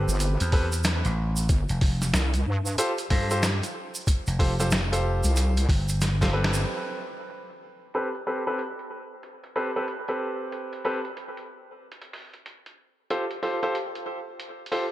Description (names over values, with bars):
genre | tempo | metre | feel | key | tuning
glitch hop | 93 BPM | 4/4 | swing 63% on 16ths | A minor | A4 = 440 Hz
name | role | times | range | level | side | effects
bright concert grand piano | stabs | 0.0-14.8 s | C4 to C5 | -29 LUFS | equal | vintage 12-bit sampler grit, sidechain pumping, low-pass filter, digital delay
vintage slap bass | bass | 0.0-6.6 s | F1 to G2 | -25 LUFS | equal | none
wobble bass | bass | 0.1-5.7 s | G1 to G2 | -23 LUFS | equal | chorus, tube saturation
tube shaker | percussion | 0.1-6.6 s | none | -36 LUFS | right 3 dB | none
boom bap sampler-style drum kit | drums | 0.2-14.9 s | hi-hat, snare drum | -31 LUFS | equal | low-pass filter on hats, low-pass filter on snare, low-pass filter on room, gated reverb
electronic kick drum | drums | 0.5-6.3 s | none | -23 LUFS | equal | none
room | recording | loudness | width
light reverb | bright 1980s-style digital production | -24 LUFS | side -15 dB against mid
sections
0.0-6.7 A section; 6.7-14.9 B section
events
drum fill 6.0-6.7; band accent 6.4-6.8; filter sweep on drum 6.7-14.9; filter sweep on grand piano 6.7-14.9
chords
0.0 Am9; 1.5 G9sus4; 6.7 Am9; 11.8 G9sus4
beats
0.20 0.85 | 1.49 2.14 2.78 3.43 | 4.07 4.72 5.36 6.01 | 6.65 7.30 7.94 8.59 | 9.23 9.88 10.52 11.17 | 11.81 12.46 13.11 13.75 | 14.39